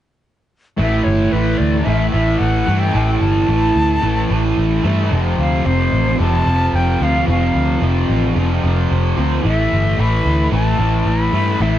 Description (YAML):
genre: rock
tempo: 111 BPM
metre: 4/4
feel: straight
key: unclear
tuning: A4 = 440 Hz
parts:
  - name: bright concert flute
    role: melody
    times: 0.8-11.8 s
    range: B4 to B5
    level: -22 LUFS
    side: left 1 dB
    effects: digital delay
  - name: fuzz guitar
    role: riff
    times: 0.8-11.8 s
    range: F2 to A3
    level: -18 LUFS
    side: equal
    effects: distortion, lush chorus
  - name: vintage muted picked electric bass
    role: bass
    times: 0.8-11.8 s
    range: F1 to G2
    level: -17 LUFS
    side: equal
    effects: none
room: small room ambience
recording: dark, warm production, nothing above 10.8 kHz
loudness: -14 LUFS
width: side -12 dB against mid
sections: 0.8-11.8 A section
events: none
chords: 0.8 A5; 5.1 F; 9.4 Asus2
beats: | 0.78 1.32 1.87 2.41 | 2.95 3.49 4.04 4.58 | 5.12 5.66 6.20 6.75 | 7.29 7.83 8.37 8.91 | 9.45 9.99 10.53 11.07 | 11.61